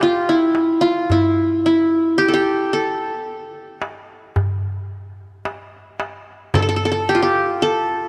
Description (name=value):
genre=Arabic maqam ensemble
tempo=110 BPM (eighths)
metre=10/8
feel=straight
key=unclear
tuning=A4 = 438 Hz
part: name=qanun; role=melody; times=0.0-8.1 s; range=E4 to A4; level=-18 LUFS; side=equal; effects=none
part: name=darbuka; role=percussion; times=0.0-7.8 s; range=none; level=-26 LUFS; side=equal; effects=none
part: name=frame drum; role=percussion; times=6.5-6.8 s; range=none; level=-29 LUFS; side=equal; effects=none
room=moderate plate reverb, RT60 3.3 s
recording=none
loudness=-18 LUFS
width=mono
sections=0.0-8.1 A section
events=none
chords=none